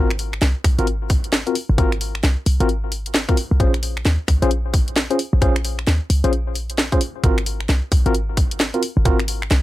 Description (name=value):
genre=UK garage, two-step garage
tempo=132 BPM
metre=4/4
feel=swing 62% on 16ths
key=unclear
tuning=A4 = 438 Hz
part: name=tine electric piano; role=stabs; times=0.0-9.2 s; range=C4 to C5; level=-23 LUFS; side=left 2 dB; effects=medium stereo tremolo, ping-pong delay
part: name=short 808-style bass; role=bass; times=0.0-9.6 s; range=Ab1 to Eb2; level=-20 LUFS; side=equal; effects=none
part: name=garage drum kit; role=drums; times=0.1-9.6 s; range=finger snaps, hi-hat, snare drum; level=-22 LUFS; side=equal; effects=none
part: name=electronic kick drum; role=drums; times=0.6-9.2 s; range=none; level=-19 LUFS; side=equal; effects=none
room=little or no reverb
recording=none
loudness=-17 LUFS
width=side -16 dB against mid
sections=0.0-9.6 A section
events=none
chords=0.0 Ab13; 3.6 Bbm9; 7.2 Ab13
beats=0.42 0.87 1.33 | 1.78 2.24 2.69 3.15 | 3.60 4.05 4.51 4.96 | 5.42 5.87 6.33 6.78 | 7.24 7.69 8.14 8.60 | 9.05 9.51